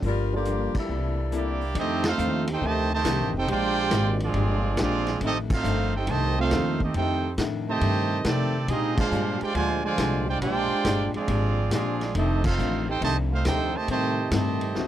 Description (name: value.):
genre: jazz, big band swing.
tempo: 138 BPM.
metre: 4/4.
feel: swing 68% on 8ths.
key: F major.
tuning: A4 = 441 Hz.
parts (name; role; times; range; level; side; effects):
archtop guitar, miked and amplified; accompaniment; 0.0-14.9 s; F2 to A4; -32 LUFS; left 8 dB; none.
upright bass; bass; 0.0-14.9 s; F1 to C3; -27 LUFS; equal; none.
vintage drum kit; drums; 0.0-14.9 s; crash cymbal, hi-hat, kick drum, ride cymbal, snare drum; -31 LUFS; equal; none.
warm saxophone section; melody; 0.1-1.6 s; G3 to D5; -30 LUFS; left 4 dB; none.
warm upright piano; accompaniment; 0.3-0.9 s; G3 to A4; -34 LUFS; right 4 dB; none.
bright trombone section; second line; 0.8-14.9 s; Bb2 to G4; -29 LUFS; right 4 dB; none.
bright trumpet section; melody; 1.4-14.9 s; Bb3 to A5; -28 LUFS; right 3 dB; none.
room: little or no reverb.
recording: dry, close 1970s-style studio recording.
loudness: -22 LUFS.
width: side -12 dB against mid.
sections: 0.0-1.8 A section; 1.8-14.9 B section.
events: band accent 0.7, 2.0, 5.4, 8.9, 12.4.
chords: 0.0 Gm7; 0.9 C13; 1.8 F13; 3.5 Bb13; 5.2 F13; 8.7 Bb13; 12.1 F13; 13.9 Am7b5.